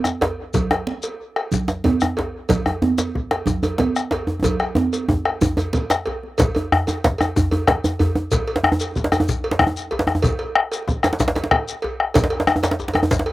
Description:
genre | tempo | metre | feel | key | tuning
west african traditional, West African drum ensemble | 124 BPM (dotted quarters) | 12/8 | straight | none | none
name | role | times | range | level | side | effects
bombo | percussion | 0.0-13.3 s | none | -21 LUFS | left 2 dB | slapback echo
djembe | percussion | 0.0-13.3 s | none | -20 LUFS | right 1 dB | none
shekere | percussion | 0.0-13.3 s | none | -27 LUFS | left 3 dB | none
cowbell | percussion | 0.2-13.3 s | none | -27 LUFS | right 2 dB | none
djembe | percussion | 0.2-13.3 s | none | -29 LUFS | left 2 dB | none
congas | percussion | 0.5-6.3 s | none | -24 LUFS | right 4 dB | none
room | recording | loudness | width
little or no reverb | recorded outdoors, with no room sound | -18 LUFS | side -16 dB against mid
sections
0.0-6.4 A section; 6.4-13.3 B section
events
speeding up 0.0-13.3; drum fill 4.4-6.4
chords
none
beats
0.05 | 0.54 1.03 1.52 2.01 | 2.50 2.98 3.47 3.96 | 4.44 4.93 5.42 5.90 | 6.38 6.87 7.35 7.83 | 8.32 8.80 9.28 9.76 | 10.24 10.72 11.20 11.68 | 12.16 12.63 13.11

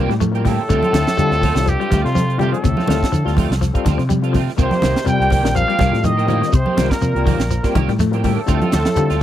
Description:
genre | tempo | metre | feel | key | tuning
afrobeat | 123 BPM | 4/4 | swing 54% on 16ths | C dorian | A4 = 439 Hz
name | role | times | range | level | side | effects
overdriven tine electric piano | accompaniment | 0.0-9.2 s | G3 to Bb4 | -25 LUFS | left 10 dB | fast tremolo
electric guitar at the edge of break-up | arpeggios | 0.0-9.1 s | C3 to A3 | -25 LUFS | left 11 dB | spring reverb
electric guitar at the edge of break-up | stabs | 0.0-9.2 s | Eb3 to G4 | -25 LUFS | right 10 dB | ensemble chorus
fingered electric bass | bass | 0.0-9.2 s | Bb1 to D3 | -19 LUFS | equal | none
tight funk drum kit | drums | 0.1-9.2 s | hi-hat, kick drum, snare drum | -20 LUFS | equal | none
congas | percussion | 0.2-9.1 s | none | -23 LUFS | right 4 dB | none
shekere | percussion | 0.2-9.1 s | none | -24 LUFS | right 2 dB | none
warm trumpet | melody | 0.5-9.2 s | F4 to G5 | -23 LUFS | equal | tape echo
breathy trumpet | second line | 0.5-9.2 s | F4 to G5 | -27 LUFS | right 6 dB | none
mellow trombone section | second line | 0.5-9.2 s | F2 to G3 | -26 LUFS | left 4 dB | none
room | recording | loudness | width
little or no reverb | dry, close 1970s-style studio recording | -14 LUFS | side -12 dB against mid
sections
0.0-9.2 A section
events
none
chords
0.0 C7(no3); 0.7 Dm7; 4.6 Cm7; 8.5 Dm7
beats
0.21 | 0.69 1.18 1.67 2.15 | 2.64 3.12 3.61 4.10 | 4.58 5.07 5.56 6.04 | 6.53 7.02 7.50 7.99 | 8.48 8.96

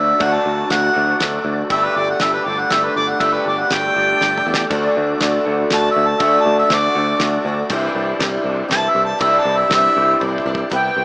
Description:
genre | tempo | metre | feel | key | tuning
folk rock and heartland rock | 120 BPM | 3/4 | straight | unclear | A4 = 440 Hz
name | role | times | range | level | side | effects
warm harmonica | second line | 0.0-10.2 s | B4 to A5 | -16 LUFS | equal | none
picked twelve-string acoustic guitar | accompaniment | 0.0-11.0 s | C3 to G4 | -21 LUFS | left 1 dB | none
tonewheel organ | sustained chords | 0.0-11.0 s | D4 to D5 | -28 LUFS | equal | none
electric guitar through a small old amp | riff | 0.0-11.0 s | C3 to G4 | -24 LUFS | equal | wide subtle chorus
picked electric bass | bass | 0.0-11.0 s | G1 to E2 | -24 LUFS | equal | none
damped 70s drum kit | drums | 0.2-10.8 s | hi-hat, kick drum, ride cymbal, snare drum, toms | -24 LUFS | equal | none
accordion | melody | 10.7-11.0 s | G5 | -16 LUFS | equal | light tremolo tuning
bright baby grand piano | accompaniment | 10.7-11.0 s | G4 to E5 | -27 LUFS | equal | none
room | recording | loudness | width
light reverb, small room reverb | rough home demo mix, small speaker sound | -14 LUFS | side -28 dB against mid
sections
0.0-10.7 A section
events
harmonica solo 0.0-10.7; drum fill 4.2-4.7, 10.2-10.7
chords
0.0 D; 1.7 Gsus2; 4.7 D; 7.7 Cadd9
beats
| 0.21 0.71 1.21 | 1.71 2.21 2.71 | 3.21 3.71 4.21 | 4.71 5.21 5.71 | 6.21 6.71 7.21 | 7.71 8.21 8.71 | 9.22 9.72 10.22 | 10.72

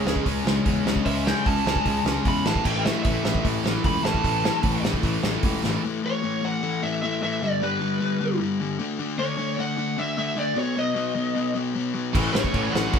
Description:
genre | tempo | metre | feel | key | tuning
punk rock | 152 BPM | 4/4 | straight | unclear | A4 = 440 Hz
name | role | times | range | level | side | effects
lead guitar through a small cranked amp | melody | 0.0-13.0 s | G#4 to B5 | -27 LUFS | right 2 dB | overdrive
distorted electric guitar | riff | 0.0-5.8, 12.1-13.0 s | A2 to C#4 | -31 LUFS | right 9 dB | overdrive
distorted electric guitar | riff | 0.0-5.6, 12.1-13.0 s | A2 to C#4 | -32 LUFS | right 2 dB | overdrive
overdriven semi-hollow guitar | riff | 0.0-13.0 s | G2 to D4 | -26 LUFS | left 4 dB | none
overdriven picked electric bass | bass | 0.1-5.8, 12.1-13.0 s | A1 to E2 | -30 LUFS | equal | none
loose indie drum kit | drums | 0.1-5.7, 12.1-13.0 s | crash cymbal, hi-hat, kick drum, ride cymbal, snare drum | -25 LUFS | right 1 dB | none
room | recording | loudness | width
light reverb | band playing live in one room | -22 LUFS | side -7 dB against mid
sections
0.0-5.8 A section; 5.8-13.0 B section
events
lead electric guitar solo 0.0-5.8; drum fill 5.6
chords
0.0 C#5; 2.5 A5; 5.8 A; 7.4 G; 8.8 D; 10.6 B; 12.1 A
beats
0.26 0.66 | 1.06 1.46 1.86 2.26 | 2.66 3.05 3.45 3.85 | 4.24 4.64 5.04 5.43 | 5.83 6.22 6.62 7.01 | 7.41 7.80 8.19 8.59 | 8.98 9.38 9.77 10.17 | 10.56 10.96 11.35 11.75 | 12.14 12.54 12.94

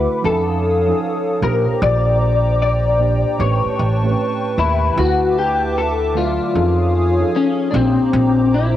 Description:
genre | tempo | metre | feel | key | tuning
lo-fi hip hop | 76 BPM | 4/4 | swing 64% on 16ths | unclear | A4 = 441 Hz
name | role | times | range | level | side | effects
electric guitar through a small old amp | melody | 0.0-8.8 s | C4 to D5 | -18 LUFS | left 5 dB | ensemble chorus, cassette tape
muted felt-like synth keys | accompaniment | 0.0-8.8 s | A2 to G#5 | -23 LUFS | right 7 dB | chorus, cassette tape
hollow soft pad | sustained chords | 0.0-8.8 s | A4 to Eb6 | -26 LUFS | right 1 dB | chorus
upright bass | bass | 0.0-8.8 s | A1 to F2 | -19 LUFS | right 1 dB | none
room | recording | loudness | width
light reverb | home recording on cassette | -14 LUFS | side -12 dB against mid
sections
0.0-8.8 A section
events
none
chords
0.2 F7alt; 1.4 Bb69; 3.4 A9; 5.0 D69; 6.6 F7alt; 7.7 Bb69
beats
0.24 1.03 | 1.82 2.61 3.40 4.19 | 4.98 5.76 6.55 7.34 | 8.13

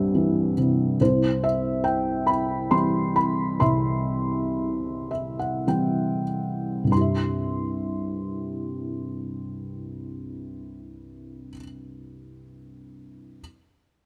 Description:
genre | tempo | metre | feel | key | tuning
classical, lyrical solo piano | 44-72 BPM | 3/4 | rubato | C major | A4 = 437 Hz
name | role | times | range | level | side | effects
felt-muted upright piano | solo | 0.0-13.4 s | C2 to C6 | -26 LUFS | equal | none
room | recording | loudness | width
light reverb | close, detailed microphones | -25 LUFS | mono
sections
0.0-1.0 A section; 1.0-6.9 B section; 6.9-10.9 C section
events
slowing down 1.0-6.9; felt piano fill 4.6-6.9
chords
0.0 C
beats
0.15 | 1.00 1.84 2.71 | 3.61 4.57 5.67 | 6.92 8.24 9.55

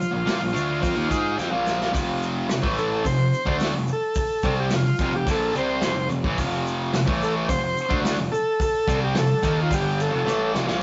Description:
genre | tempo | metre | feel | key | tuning
garage rock duo or trio | 108 BPM | 4/4 | straight | F major | A4 = 441 Hz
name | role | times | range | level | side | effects
combo organ | melody | 0.0-10.5 s | F4 to C5 | -28 LUFS | equal | none
fuzz picked electric bass | bass | 0.0-10.8 s | F1 to Bb2 | -32 LUFS | equal | overdrive, tube saturation
tube shaker | percussion | 0.0-10.7 s | none | -46 LUFS | equal | none
fuzz guitar | riff | 0.1-10.8 s | F2 to Ab4 | -27 LUFS | equal | distortion
vintage drum kit | drums | 0.3-10.8 s | hi-hat, kick drum, snare drum | -30 LUFS | equal | none
room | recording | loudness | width
moderate studio reverb, RT60 0.6 s | rough rehearsal-room recording, nothing above 7.8 kHz | -23 LUFS | mono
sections
0.0-1.9 A section; 1.9-10.8 B section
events
drum fill 1.4-1.9, 10.3-10.8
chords
0.0 Bb5; 1.9 F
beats
0.27 0.83 1.39 | 1.94 2.50 3.05 3.61 | 4.16 4.72 5.28 5.83 | 6.39 6.94 7.50 8.05 | 8.61 9.16 9.72 10.27

